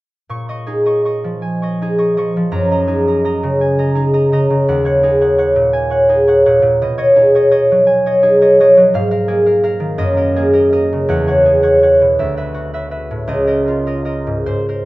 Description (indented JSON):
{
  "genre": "classical, solo harp piece",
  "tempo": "55 BPM (dotted quarters)",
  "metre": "6/8",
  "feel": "uneven beats, rubato",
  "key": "Bb minor",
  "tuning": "A4 = 439 Hz",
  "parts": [
    { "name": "concert harp", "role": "solo", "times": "0.3-14.9 s", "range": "Db2 to Db6", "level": "-11 LUFS", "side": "equal", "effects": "none" }
  ],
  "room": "light reverb",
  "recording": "close, detailed microphones",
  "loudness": "-11 LUFS",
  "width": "side -18 dB against mid",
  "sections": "0.3-14.9 A section",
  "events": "none",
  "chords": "0.3 Bbm7; 2.5 Gb69; 4.7 Ebm7; 6.8 B69; 8.9 Absus2; 10.0 Gb69; 11.1 E69; 12.2 D69; 13.3 Db69",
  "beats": "| 0.30 1.43 | 2.53 3.62 | 4.69 5.75 | 6.81 7.88 | 8.94 9.99 | 11.08 12.17 | 13.28 14.45"
}